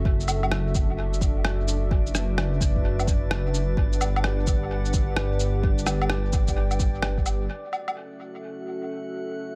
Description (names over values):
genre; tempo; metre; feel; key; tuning
future garage; 129 BPM; 4/4; swing 65% on 16ths; F# phrygian; A4 = 440 Hz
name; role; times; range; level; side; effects
dark analog pad; sustained chords; 0.0-9.6 s; C#4 to G5; -34 LUFS; equal; chorus, sidechain pumping
dark detuned saw bass; bass; 0.0-7.5 s; F#1 to G1; -28 LUFS; equal; sidechain pumping
electronic kick drum; drums; 0.1-7.2 s; none; -26 LUFS; equal; studio ambience
drifting glass-harmonics texture; texture; 1.2-9.6 s; D5 to F#5; -42 LUFS; equal; chorus, built-in reverb
electronic shaker, woodblock and rim click; drums; 0.2-7.9 s; none; -33 LUFS; equal; studio ambience, dub echo
room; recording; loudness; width
light reverb; echo-heavy mix; -25 LUFS; mono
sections
0.0-7.5 A section; 7.5-9.6 B section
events
none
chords
0.1 Dadd9/F#; 3.8 Gmaj7; 7.5 F#m7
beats
| 0.05 0.52 0.98 1.45 | 1.91 2.38 2.84 3.31 | 3.77 4.24 4.70 5.17 | 5.63 6.10 6.56 7.03 | 7.49 7.96 8.42 8.89 | 9.35